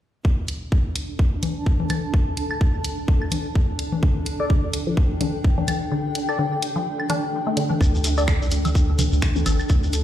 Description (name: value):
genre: minimal techno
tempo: 127 BPM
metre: 4/4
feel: swing 57% on 16ths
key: unclear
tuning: A4 = 438 Hz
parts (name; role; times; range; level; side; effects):
- electronic kick drum; drums; 0.2-9.8 s; none; -19 LUFS; equal; studio reverb
- granular cloud pad; texture; 0.8-10.0 s; D4 to A5; -28 LUFS; equal; built-in reverb, sidechain pumping
- garage drum kit; drums; 0.5-10.0 s; finger snaps, hi-hat; -30 LUFS; right 1 dB; studio reverb
- congas, claves and woodblock; percussion; 1.4-9.8 s; none; -28 LUFS; left 4 dB; studio reverb, digital delay
- resonant blip pluck; riff; 4.0-9.7 s; D3 to D4; -28 LUFS; left 1 dB; chorus, phaser, sidechain pumping, dub echo
- percussive organ stab; stabs; 4.4-8.2 s; D4 to D5; -28 LUFS; left 1 dB; analog chorus, digital delay
- rubbery square bass; bass; 7.8-10.0 s; A1 to D2; -21 LUFS; equal; sidechain pumping
- shekere; percussion; 7.8-10.0 s; none; -31 LUFS; left 1 dB; none
room: light reverb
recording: played on a big sound system in a bare room, large studio reverb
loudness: -20 LUFS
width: side -12 dB against mid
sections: 0.2-7.8 A section; 7.8-10.0 B section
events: break 5.9-7.8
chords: 0.2 D5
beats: | 0.25 0.72 1.19 1.67 | 2.14 2.61 3.08 3.56 | 4.03 4.50 4.97 5.45 | 5.92 6.39 6.86 7.33 | 7.81 8.28 8.75 9.22 | 9.70